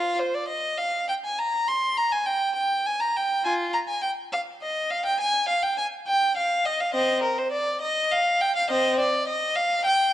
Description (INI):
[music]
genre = classical, baroque-style suite movement for unaccompanied violin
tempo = 68 BPM (dotted quarters)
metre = 12/8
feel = rubato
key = Eb major from 6.9 s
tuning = A4 = 439 Hz
[part]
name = clear violin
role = solo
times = 0.0-10.1 s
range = C4 to C6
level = -22 LUFS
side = equal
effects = none
[sound]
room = moderate recital hall reverb, RT60 1.6 s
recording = nothing above 10.5 kHz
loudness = -22 LUFS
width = side -12 dB against mid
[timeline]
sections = 0.0-10.1 A section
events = none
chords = none